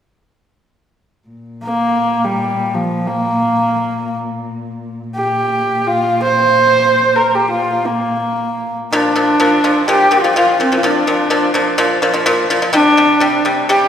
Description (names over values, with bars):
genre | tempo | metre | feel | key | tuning
mongolian traditional, Mongolian folk | free time | none | none | Bb gong mode | A4 = 440 Hz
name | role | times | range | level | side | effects
dark cello | drone | 1.3-9.0 s | Bb2 | -25 LUFS | left 2 dB | none
rich horsehead fiddle | melody | 1.6-13.9 s | F3 to C5 | -13 LUFS | equal | none
pipa | arpeggios | 8.9-13.9 s | Bb2 to G3 | -14 LUFS | left 1 dB | none
room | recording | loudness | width
wet concert hall reverb, RT60 2.1 s | recorded in a church or concert hall | -12 LUFS | side -8 dB against mid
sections
1.3-8.9 A section; 8.9-13.9 B section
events
none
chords
1.3 N.C.; 8.9 Bb5; 12.7 C5